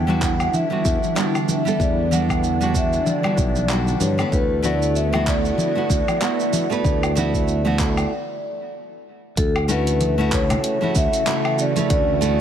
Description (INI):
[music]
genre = sunset chillout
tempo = 95 BPM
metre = 4/4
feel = swing 57% on 16ths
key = D major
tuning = A4 = 436 Hz
[part]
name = vibraphone with soft mallets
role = melody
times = 0.0-12.4 s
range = A4 to G5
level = -24 LUFS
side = equal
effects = ping-pong delay
[part]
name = nylon-string guitar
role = accompaniment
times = 0.0-12.4 s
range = C#3 to B4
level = -25 LUFS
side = moving between left 6 dB and right 7 dB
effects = auto-pan, tape echo
[part]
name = soft string machine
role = sustained chords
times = 0.0-12.4 s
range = C#3 to F#4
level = -28 LUFS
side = equal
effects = phaser, ensemble chorus
[part]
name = modern bright fingered electric bass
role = bass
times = 0.0-12.4 s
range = B1 to G2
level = -22 LUFS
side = equal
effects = none
[part]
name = congas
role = percussion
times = 0.1-11.9 s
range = none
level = -28 LUFS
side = left 2 dB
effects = none
[part]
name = deep house drum kit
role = drums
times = 0.2-12.4 s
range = handclaps, hi-hat, shaker, woodblock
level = -28 LUFS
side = equal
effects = none
[part]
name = electronic kick drum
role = drums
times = 0.2-12.0 s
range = none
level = -23 LUFS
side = equal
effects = none
[sound]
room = light reverb, digital ambience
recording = heavily compressed radio sound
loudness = -18 LUFS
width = side -9 dB against mid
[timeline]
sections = 0.0-9.4 A section; 9.4-12.4 B section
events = break 8.1-9.4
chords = 0.0 Em9; 4.3 D69; 9.4 Dmaj9